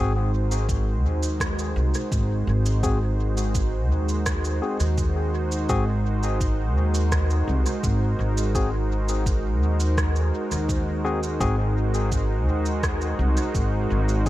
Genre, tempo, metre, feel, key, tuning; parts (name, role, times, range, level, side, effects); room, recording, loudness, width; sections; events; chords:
ambient dub; 84 BPM; 4/4; straight; Ab mixolydian; A4 = 440 Hz
warm analog pad; sustained chords; 0.0-14.3 s; Ab3 to C5; -28 LUFS; right 1 dB; chorus
barky tine electric piano; stabs; 0.0-14.3 s; C4 to Ab4; -32 LUFS; left 3 dB; dub echo
upright bass; bass; 0.0-14.3 s; Ab1 to Eb2; -23 LUFS; equal; tube saturation
electronic cabasa and rim click; drums; 0.5-14.3 s; -33 LUFS; right 1 dB; dub echo
electronic kick drum; drums; 0.7-14.3 s; -27 LUFS; equal
digital ambience; -21 LUFS; side -15 dB against mid
0.0-14.3 A section
0.0 Ab7